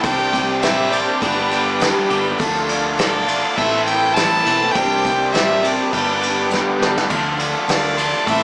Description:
folk rock and heartland rock; 102 BPM; 4/4; straight; C major; A4 = 440 Hz
rich fiddle; melody; 0.0-8.4 s; D5 to A5; -20 LUFS; equal
picked twelve-string acoustic guitar; accompaniment; 0.0-8.4 s; G2 to A4; -24 LUFS; left 1 dB
musette accordion; sustained chords; 0.0-8.4 s; A4 to D6; -27 LUFS; equal
cranked stack guitar; riff; 0.0-8.4 s; G2 to G4; -20 LUFS; equal; overdrive
hollow-body short-scale fingered electric bass; bass; 0.0-8.4 s; G1 to D2; -32 LUFS; equal
soft brush drum kit; drums; 0.0-8.4 s; crash cymbal, kick drum, ride cymbal, snare drum; -20 LUFS; equal
tambourine; percussion; 0.0-8.4 s; -36 LUFS; right 1 dB
moderate large studio reverb, RT60 0.8 s; small speaker sound; -15 LUFS; side -27 dB against mid
0.0-8.4 A section
drum fill 6.5-7.1
0.0 Csus2; 1.2 G; 2.4 Dm; 3.6 Am; 4.8 Csus2; 5.9 G; 7.1 Dm
| 0.04 0.63 1.22 1.81 | 2.40 2.99 3.58 4.17 | 4.75 5.34 5.93 6.51 | 7.10 7.68 8.27

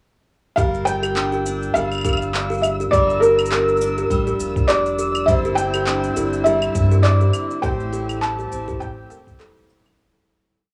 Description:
folktronica; 102 BPM; 4/4; swing 56% on 16ths; G dorian; A4 = 435 Hz
felt-muted upright piano; melody; 0.6-9.6 s; Bb4 to A5; -23 LUFS; equal; cassette tape, analog delay
kalimba; second line; 0.6-9.9 s; G3 to G5; -28 LUFS; equal; cassette tape, analog delay
picked steel-string acoustic guitar; arpeggios; 0.6-10.6 s; A2 to C5; -30 LUFS; equal; cassette tape, analog delay
warm sub bass; bass; 0.6-9.9 s; E1 to G2; -26 LUFS; equal
electronic kick drum; drums; 0.6-9.4 s; -26 LUFS; equal; overdrive, cassette tape
electronic shaker, claves and handclaps; drums; 0.6-10.0 s; -29 LUFS; equal; overdrive, cassette tape
flickering grainy texture; texture; 1.0-10.0 s; E6; -35 LUFS; equal; built-in reverb, cassette tape
musette accordion; sustained chords; 5.3-10.0 s; C3 to G4; -35 LUFS; equal; cassette tape
light reverb; home recording on cassette, small room ambience; -19 LUFS; mono
0.6-10.0 groove
fade-out 6.8-10.0
0.6 Gm7; 5.3 Cadd9/G; 7.6 Am7
| 0.57 1.16 1.75 2.34 | 2.93 3.52 4.11 4.69 | 5.28 5.87 6.46 7.05 | 7.63 8.22 8.81 9.40

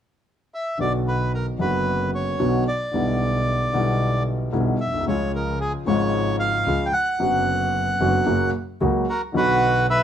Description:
tango; 112 BPM; 4/4; rubato; B harmonic minor; A4 = 441 Hz
bandoneon; melody; 0.5-10.0 s; F#4 to G5; -23 LUFS; right 1 dB
warm grand piano; accompaniment; 0.8-10.0 s; F#1 to F#4; -23 LUFS; left 1 dB
clear double bass; bass; 0.8-10.0 s; F#1 to C#2; -27 LUFS; right 1 dB
moderate studio reverb, RT60 0.7 s; minimal, uncompressed stereo recording; -20 LUFS; side -9 dB against mid
0.8-9.4 A section
0.0 N.C.; 0.8 Bm; 2.9 Em7/B; 5.1 C#; 7.2 Bm/F#; 8.3 F#; 9.4 Bm
0.25 | 0.79 1.33 1.87 2.41 | 2.94 3.47 4.00 4.54 | 5.07 5.60 6.13 6.66 | 7.20 7.73 8.27 8.81 | 9.36 9.90

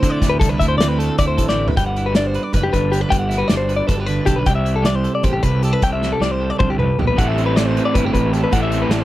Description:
math rock and midwest emo; 310 BPM (eighths); 7/8; straight; G major; A4 = 440 Hz
twelve-string electric guitar; accompaniment; 0.0-9.0 s; A2 to C5; -22 LUFS; right 4 dB
direct-recorded clean electric guitar; arpeggios; 0.0-9.0 s; G4 to G5; -21 LUFS; left 4 dB
fuzz picked electric bass; bass; 0.0-9.0 s; F#1 to D3; -21 LUFS; equal; overdrive
loose indie drum kit; drums; 0.0-9.0 s; hi-hat, kick drum, snare drum, toms; -20 LUFS; equal
raw garage guitar; riff; 7.2-9.0 s; A2 to A4; -21 LUFS; right 1 dB; overdrive
little or no reverb; -15 LUFS; side -15 dB against mid
0.0-1.8 A section; 1.8-9.0 B section
drum fill 1.5, 6.0-7.2
0.0 Dsus2; 1.8 Gmaj7; 4.5 C69; 7.2 Am9
0.02 0.22 | 0.41 0.60 0.80 0.99 1.18 1.37 1.57 | 1.76 1.95 2.15 2.34 2.53 2.73 2.92 | 3.11 3.31 3.50 3.69 3.89 4.08 4.27 | 4.47 4.66 4.85 5.05 5.24 5.43 5.63 | 5.82 6.01 6.21 6.40 6.59 6.79 6.98 | 7.17 7.37 7.56 7.75 7.95 8.14 8.33 | 8.53 8.72 8.91

